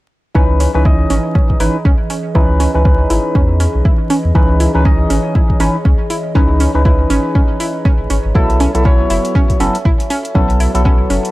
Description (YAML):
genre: deep house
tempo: 120 BPM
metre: 4/4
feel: swing 59% on 16ths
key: C# minor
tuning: A4 = 445 Hz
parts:
  - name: percussive organ stab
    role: stabs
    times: 0.3-11.3 s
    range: E3 to D#5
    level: -18 LUFS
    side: equal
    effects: chorus, tape echo
  - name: warbly tape-like pad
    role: sustained chords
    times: 0.4-11.3 s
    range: E3 to E5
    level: -25 LUFS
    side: equal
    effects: chorus, built-in reverb, sidechain pumping
  - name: analog pluck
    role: arpeggios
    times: 0.4-11.2 s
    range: C#4 to E4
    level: -21 LUFS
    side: right 2 dB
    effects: chorus, sidechain pumping, tape echo
  - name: warm sub bass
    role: bass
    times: 0.4-11.2 s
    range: F#1 to E2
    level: -15 LUFS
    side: equal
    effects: transformer saturation, sidechain pumping
  - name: electronic kick drum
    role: drums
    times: 0.4-11.0 s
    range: none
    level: -12 LUFS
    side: equal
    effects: none
  - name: electronic hi-hat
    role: drums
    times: 0.6-11.3 s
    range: none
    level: -28 LUFS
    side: equal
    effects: none
room: little or no reverb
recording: dry, gritty hardware recording, transformer saturation, vinyl crackle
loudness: -11 LUFS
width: side -18 dB against mid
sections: 0.4-11.3 A section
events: none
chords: 0.4 C#m9; 8.4 B7sus4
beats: | 0.35 0.85 1.35 1.85 | 2.35 2.85 3.35 3.85 | 4.35 4.85 5.35 5.85 | 6.35 6.85 7.35 7.85 | 8.35 8.85 9.35 9.85 | 10.35 10.85